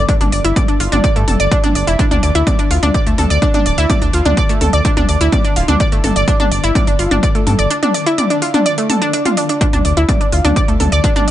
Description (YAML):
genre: melodic techno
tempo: 126 BPM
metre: 4/4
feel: straight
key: D minor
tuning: A4 = 440 Hz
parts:
  - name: analog pluck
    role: arpeggios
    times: 0.0-11.3 s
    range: A3 to D6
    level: -16 LUFS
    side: equal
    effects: chorus, sidechain pumping, tape echo
  - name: round analog bass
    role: bass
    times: 0.0-11.3 s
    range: D1 to G2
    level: -16 LUFS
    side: equal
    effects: sidechain pumping
  - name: electronic kick drum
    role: drums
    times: 0.1-11.1 s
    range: none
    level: -16 LUFS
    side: equal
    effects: none
  - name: techno drum kit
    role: drums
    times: 0.1-11.3 s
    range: hi-hat, toms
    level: -20 LUFS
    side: left 1 dB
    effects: sidechain pumping on hats, sidechain pumping on toms
room: little or no reverb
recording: nothing above 10.8 kHz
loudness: -12 LUFS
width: side -12 dB against mid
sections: 0.0-11.3 A section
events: none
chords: 0.0 G5; 2.0 Dmadd9; 5.8 G5; 9.6 Dmadd9